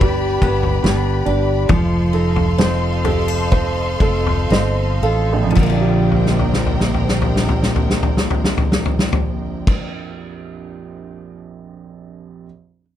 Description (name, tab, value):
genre	pop ballad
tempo	55-74 BPM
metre	4/4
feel	straight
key	Bb major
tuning	A4 = 435 Hz
part	clear upright piano	accompaniment	0.0-12.5 s	Bb1 to G5	-22 LUFS	right 6 dB	none
part	warm studio string section	sustained chords	0.0-9.9 s	Bb3 to C6	-26 LUFS	left 2 dB	none
part	picked steel-string acoustic guitar	arpeggios	0.0-10.0 s	G2 to A4	-24 LUFS	left 11 dB	none
part	mellow fretless electric bass	bass	0.0-9.9 s	F1 to Bb1	-21 LUFS	equal	wide subtle chorus
part	loose indie drum kit	drums	0.0-11.4 s	crash cymbal, kick drum, snare drum, toms	-18 LUFS	left 1 dB	none
room	little or no reverb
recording	none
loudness	-15 LUFS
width	side -11 dB against mid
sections	0.0-5.6 A section; 5.6-9.9 B section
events	slowing down 0.0-5.6; upright piano fill 4.0-5.6; drum fill 6.1-9.7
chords	0.0 G; 1.7 F7; 5.6 Bb6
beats	0.02 0.84 | 1.70 2.58 3.52 4.51 | 5.56 6.66 7.75 8.85